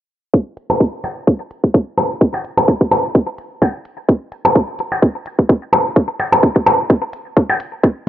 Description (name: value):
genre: techno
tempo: 128 BPM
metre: 4/4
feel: swing 55% on 16ths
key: none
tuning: none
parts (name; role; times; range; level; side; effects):
- electronic kick drum; drums; 0.3-7.9 s; none; -11 LUFS; equal; high-pass filter on kick
- electronic hi-hat; drums; 0.6-7.7 s; none; -42 LUFS; right 1 dB; none
- percussion blips; percussion; 0.7-7.6 s; none; -16 LUFS; left 1 dB; tape echo
room: light reverb, digital ambience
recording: dry, gritty hardware recording, transformer saturation, cassette tape, low-pass filter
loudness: -14 LUFS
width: side -12 dB against mid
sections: 0.3-8.1 A section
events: filter sweep 0.3-8.1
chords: none